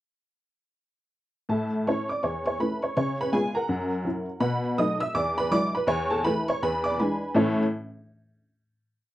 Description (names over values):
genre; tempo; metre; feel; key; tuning
jazz, stride piano; 164 BPM; 4/4; swing 61% on 8ths; A major; A4 = 435 Hz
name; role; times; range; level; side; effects
honky-tonk upright piano; solo; 1.5-7.6 s; E2 to E6; -24 LUFS; equal; none
room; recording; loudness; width
light reverb; dry, close 1970s-style studio recording; -24 LUFS; side -15 dB against mid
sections
1.5-7.3 A section; 7.3-8.8 final chord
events
none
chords
1.5 A; 3.0 C#7; 3.7 F#7; 4.4 B7; 5.1 E9; 5.9 A/E; 6.6 E7; 7.3 A